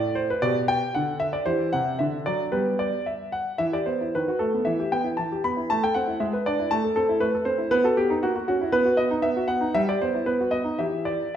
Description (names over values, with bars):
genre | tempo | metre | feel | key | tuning
classical-period piano sonatina | 109-120 BPM | 2/4 | rubato | G major, E minor from 3.6 s | A4 = 440 Hz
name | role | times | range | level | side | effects
clear concert grand piano | solo | 0.0-11.3 s | A2 to B5 | -22 LUFS | equal | none
room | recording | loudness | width
wet recital hall reverb, RT60 1.8 s | minimal, uncompressed stereo recording | -22 LUFS | side -9 dB against mid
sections
0.0-3.6 A section; 3.6-11.4 B section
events
none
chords
0.4 G/B; 0.9 N.C.; 1.5 C/E; 2.0 D; 2.5 G; 3.6 Em; 4.1 B7/D#; 4.7 Em; 5.7 Am; 6.2 E7/G#; 6.7 Am; 7.7 B; 8.2 F#7/A#; 8.7 B; 9.8 Em/G; 10.3 B; 10.8 Em